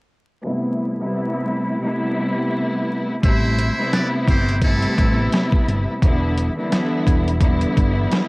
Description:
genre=hip hop, boom-bap hip-hop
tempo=86 BPM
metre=4/4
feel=swing 58% on 16ths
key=A minor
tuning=A4 = 438 Hz
part: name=warm studio string section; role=accompaniment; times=0.4-8.3 s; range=B2 to E4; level=-21 LUFS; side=equal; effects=cassette tape, high-pass filter, low-pass filter
part: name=muted trumpet section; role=stabs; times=3.2-5.3 s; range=C4 to E5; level=-25 LUFS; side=equal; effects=high-pass filter, low-pass filter, cassette tape, analog delay
part: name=fingered electric bass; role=bass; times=3.2-8.1 s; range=E1 to A1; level=-21 LUFS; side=equal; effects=none
part: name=boom bap sampler-style drum kit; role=drums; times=3.2-8.3 s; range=hi-hat, kick drum, rim click, snare drum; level=-18 LUFS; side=equal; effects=none
room=small room ambience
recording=home recording on cassette, vinyl crackle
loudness=-17 LUFS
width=side -26 dB against mid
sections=0.4-3.2 A section; 3.2-8.3 B section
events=filter sweep on string section 0.4-3.2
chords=0.4 Am9; 6.0 Em7

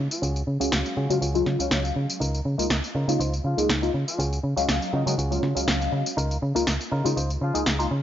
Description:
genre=filtered disco house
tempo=121 BPM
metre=4/4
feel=straight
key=Db major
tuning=A4 = 441 Hz
part: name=slap-like FM bass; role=bass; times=0.0-8.0 s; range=Db2 to Db3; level=-26 LUFS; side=equal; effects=tube saturation, low-pass filter
part: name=brilliant horn section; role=melody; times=0.1-7.6 s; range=Db3 to F4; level=-36 LUFS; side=left 2 dB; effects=low-pass filter, tape echo
part: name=electronic tambourine and snare drum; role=drums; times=0.1-7.9 s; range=none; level=-28 LUFS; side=equal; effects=none
part: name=direct-recorded clean electric guitar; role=riff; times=0.2-7.8 s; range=Db4 to C5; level=-33 LUFS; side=right 1 dB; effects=low-pass filter
part: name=funky polysynth comp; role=accompaniment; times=0.6-7.9 s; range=Gb3 to F5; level=-27 LUFS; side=left 2 dB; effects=chorus, phaser, low-pass filter
room=light reverb, digital ambience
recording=dry, gritty hardware recording, cassette tape, nothing above 7.5 kHz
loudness=-22 LUFS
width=side -11 dB against mid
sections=0.0-8.0 A section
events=filter sweep 0.0-8.0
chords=0.2 Dbadd11; 2.2 Db69; 4.2 Dbadd11; 6.2 Db69

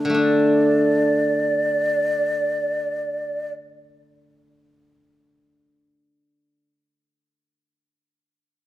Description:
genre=chinese traditional, Chinese chamber ensemble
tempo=free time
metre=none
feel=none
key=unclear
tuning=A4 = 440 Hz
part: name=steel-string zither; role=accompaniment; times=0.0-6.7 s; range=D3 to D4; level=-20 LUFS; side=left 1 dB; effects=none
part: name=breathy xiao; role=melody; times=0.2-3.5 s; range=D5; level=-22 LUFS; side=right 1 dB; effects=none
room=light reverb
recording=none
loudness=-18 LUFS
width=side -14 dB against mid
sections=0.2-3.8 A section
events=none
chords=none

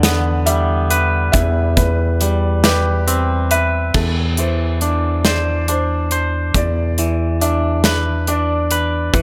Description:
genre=post-rock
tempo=46 BPM (dotted quarters)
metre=6/8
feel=straight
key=unclear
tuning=A4 = 441 Hz
part: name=felt-muted upright piano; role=arpeggios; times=0.0-9.2 s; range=A4 to E5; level=-27 LUFS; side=equal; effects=tape echo
part: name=twangy electric guitar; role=arpeggios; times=0.0-9.2 s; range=E2 to C5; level=-22 LUFS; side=equal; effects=tape echo
part: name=fingered electric bass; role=bass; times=0.0-9.2 s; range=E2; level=-21 LUFS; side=equal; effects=none
part: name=big rock drum kit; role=drums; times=0.0-9.2 s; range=crash cymbal, hi-hat, kick drum, snare drum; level=-21 LUFS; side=equal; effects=none
room=small room ambience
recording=none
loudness=-17 LUFS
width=mono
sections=0.0-3.9 A section; 3.9-9.2 B section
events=none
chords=0.0 Em7; 1.3 Cmaj7/E; 3.9 D5/E; 6.5 Bm/E

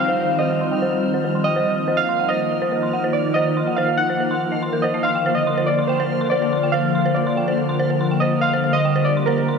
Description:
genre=IDM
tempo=142 BPM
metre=4/4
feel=straight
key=unclear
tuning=A4 = 440 Hz
part: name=warbly lo-fi synth keys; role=melody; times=0.0-9.6 s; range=Bb4 to Gb5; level=-21 LUFS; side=right 2 dB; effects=chorus, digital delay
part: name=glassy FM pad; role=sustained chords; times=0.0-9.6 s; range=D3 to C5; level=-22 LUFS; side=left 2 dB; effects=ensemble chorus, built-in reverb
part: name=dark detuned synth bell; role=arpeggios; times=0.0-9.5 s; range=Bb4 to C6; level=-25 LUFS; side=right 2 dB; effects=chorus, low-pass filter, ping-pong delay
part: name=bubbling stepped-filter texture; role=texture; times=0.0-9.6 s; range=F3 to F6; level=-29 LUFS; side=left 4 dB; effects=chorus, built-in reverb
room=wet lush hall reverb, RT60 2.8 s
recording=none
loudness=-17 LUFS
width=side -5 dB against mid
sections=0.0-9.6 A section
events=filter sweep on synth bell 0.0-9.6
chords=0.0 Cm; 1.7 Eb5; 5.0 Bb

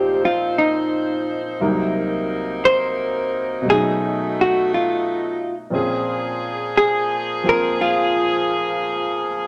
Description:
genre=jazz ballad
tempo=58 BPM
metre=4/4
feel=swing 68% on 8ths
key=Bb minor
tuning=A4 = 440 Hz
part: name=hollow-body jazz guitar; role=melody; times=0.0-9.5 s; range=Eb4 to C5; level=-21 LUFS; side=equal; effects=none
part: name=warm baby grand piano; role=accompaniment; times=0.0-9.5 s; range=C2 to Ab4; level=-27 LUFS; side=equal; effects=none
part: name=bright saxophone section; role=sustained chords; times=0.0-9.5 s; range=F3 to C5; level=-27 LUFS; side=equal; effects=none
room=moderate studio reverb, RT60 0.8 s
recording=none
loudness=-20 LUFS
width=mono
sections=0.0-9.5 A section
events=none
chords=0.0 Ebsus2; 1.6 Cm7b5; 3.7 B9; 5.7 Bbm9

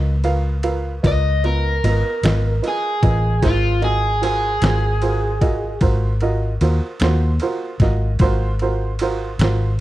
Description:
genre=slow blues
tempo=50 BPM (dotted quarters)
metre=12/8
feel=straight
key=Ab mixolydian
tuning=A4 = 440 Hz
part: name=warm upright piano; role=accompaniment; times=0.0-9.7 s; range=Cb4 to F5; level=-24 LUFS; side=right 4 dB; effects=none
part: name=vintage muted fingered electric bass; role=bass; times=0.0-9.8 s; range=Ab1 to Eb2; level=-19 LUFS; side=equal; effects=none
part: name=trip hop sampler-style drum kit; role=drums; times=0.2-9.6 s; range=kick drum, ride cymbal, snare drum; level=-22 LUFS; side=equal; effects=overdrive
part: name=overdriven semi-hollow guitar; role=melody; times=1.1-5.8 s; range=F4 to Eb5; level=-21 LUFS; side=equal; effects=none
room=little or no reverb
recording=dry, close 1970s-style studio recording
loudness=-16 LUFS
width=side -15 dB against mid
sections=0.0-9.8 A section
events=overdriven electric guitar solo 0.0-9.8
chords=0.0 Db13; 3.4 Ab13

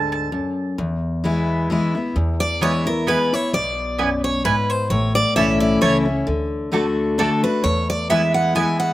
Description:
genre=bluegrass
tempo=131 BPM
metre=3/4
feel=swing 55% on 8ths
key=E mixolydian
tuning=A4 = 438 Hz
part: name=picked steel-string acoustic guitar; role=accompaniment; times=0.0-8.9 s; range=E2 to F#4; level=-20 LUFS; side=left 2 dB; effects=slapback echo
part: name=mandolin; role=stabs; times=0.0-8.7 s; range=A3 to A5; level=-25 LUFS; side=right 7 dB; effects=slapback echo
part: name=upright bass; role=bass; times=0.0-8.6 s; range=A1 to E2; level=-27 LUFS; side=equal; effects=none
part: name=picked steel-string acoustic guitar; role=melody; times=2.4-8.9 s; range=A4 to G#5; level=-20 LUFS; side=equal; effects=slapback echo
room=light reverb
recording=recorded outdoors, with no room sound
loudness=-17 LUFS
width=side -15 dB against mid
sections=0.0-2.2 A section; 2.2-8.9 A section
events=mandolin solo 0.0-2.2; steel-string acoustic guitar solo 2.2-8.9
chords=0.0 D; 0.8 E; 4.9 A; 6.3 D; 7.6 E

